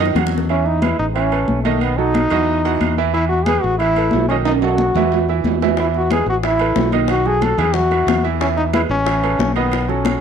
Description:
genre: latin, salsa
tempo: 182 BPM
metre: 4/4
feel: straight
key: E major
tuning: A4 = 439 Hz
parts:
  - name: bright trombone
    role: melody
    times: 0.0-10.2 s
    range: A3 to A4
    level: -19 LUFS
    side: left 2 dB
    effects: none
  - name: clear grand piano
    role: accompaniment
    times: 0.0-10.2 s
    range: D#3 to F#5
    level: -21 LUFS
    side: right 12 dB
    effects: none
  - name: fingered electric bass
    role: bass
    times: 0.0-10.2 s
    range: A1 to F#2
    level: -21 LUFS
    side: left 2 dB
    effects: none
  - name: congas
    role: percussion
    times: 0.0-10.2 s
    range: none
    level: -24 LUFS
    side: left 3 dB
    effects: none
  - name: timbales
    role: percussion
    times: 0.0-10.2 s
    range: none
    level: -24 LUFS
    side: right 12 dB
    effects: none
  - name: bongos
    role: percussion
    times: 0.1-0.5, 5.8-10.1 s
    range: none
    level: -26 LUFS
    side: left 14 dB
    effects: none
room: light reverb, studio ambience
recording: 1960s-style stereo with parts hard left and right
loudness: -15 LUFS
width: side -7 dB against mid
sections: 0.5-10.2 A section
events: drum fill 0.0-0.5, 4.5-5.8, 10.1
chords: 0.5 E; 1.2 Aadd9; 1.8 B7; 2.5 Eadd9; 3.8 Asus2; 4.5 B7; 5.1 E; 6.4 Asus2; 7.1 B7; 7.7 Eadd9; 9.1 Aadd9

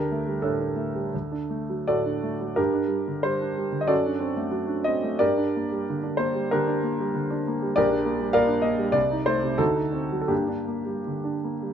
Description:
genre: classical, romantic character piece for solo piano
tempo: 93 BPM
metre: 4/4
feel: uneven beats, rubato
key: G minor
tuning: A4 = 442 Hz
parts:
  - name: clear concert grand piano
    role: solo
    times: 0.0-11.7 s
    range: Bb1 to F5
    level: -23 LUFS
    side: equal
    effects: none
room: light reverb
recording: nothing above 7.8 kHz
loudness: -23 LUFS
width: side -8 dB against mid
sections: 0.0-11.7 A section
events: none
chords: 0.0 Dsus4; 1.1 D; 2.6 Gm; 3.9 D7/F#; 5.2 Gm; 7.8 Gm/Bb; 9.0 Adim/C; 9.6 D7b9; 10.3 Gm

